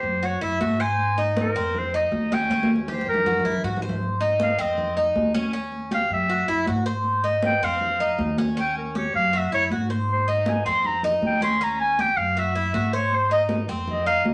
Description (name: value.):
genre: latin, Cuban son and guajira.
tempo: 158 BPM.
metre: 4/4.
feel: straight.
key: Ab major.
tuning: A4 = 438 Hz.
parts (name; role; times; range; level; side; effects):
bright clarinet; melody; 0.0-14.2 s; Bb4 to C6; -26 LUFS; equal; none.
Cuban tres; arpeggios; 0.0-14.3 s; C4 to C5; -29 LUFS; equal; none.
upright bass; bass; 0.0-14.3 s; Eb2 to Ab2; -32 LUFS; equal; none.
congas; percussion; 0.0-14.3 s; none; -30 LUFS; equal; none.
room: wet studio reverb, RT60 0.6 s.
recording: none.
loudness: -23 LUFS.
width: mono.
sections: 0.0-14.3 A section.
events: clarinet solo 0.0-14.3; drum fill 2.5-4.0.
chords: 0.2 Abaug7/Gb; 1.0 Abadd9; 1.7 F5; 2.5 Eb7; 3.3 Gb7; 4.0 Ab; 4.8 F5; 5.5 Eb7; 6.3 Abaug7/Gb; 7.1 Ab; 7.8 F5; 8.6 Eb7; 9.3 Abaug7/Gb; 10.1 Ab; 10.9 F5; 11.6 Eb7; 12.4 Abaug7/Gb; 13.1 Ab.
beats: 0.22 0.60 | 0.99 1.37 1.75 2.13 | 2.51 2.89 3.27 3.65 | 4.03 4.40 4.78 5.16 | 5.54 5.92 6.30 6.68 | 7.06 7.44 7.82 8.20 | 8.58 8.96 9.33 9.71 | 10.09 10.47 10.85 11.23 | 11.61 11.99 12.37 12.74 | 13.12 13.50 13.88 14.26.